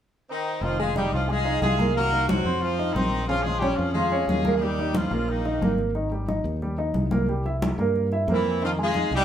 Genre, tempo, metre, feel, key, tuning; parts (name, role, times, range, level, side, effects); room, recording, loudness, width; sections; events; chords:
latin, salsa; 180 BPM; 4/4; straight; F minor; A4 = 440 Hz
clear horn section; melody; 0.3-5.8, 8.3-9.2 s; Eb3 to Bb4; -26 LUFS; left 1 dB
warm baby grand piano; accompaniment; 0.6-9.2 s; Db3 to E5; -27 LUFS; right 2 dB
fingered electric bass; bass; 0.6-9.2 s; F1 to G2; -28 LUFS; equal
congas; percussion; 0.6-9.2 s; -29 LUFS; equal
wet studio reverb, RT60 0.7 s; band playing live in one room; -22 LUFS; side -9 dB against mid
0.6-9.2 A section
0.0 N.C.; 0.6 Fm7; 2.0 Cm7b5; 2.6 F5; 3.3 Bbm7; 4.6 Eb7; 6.0 Abmaj7; 7.3 C7; 8.6 Fm7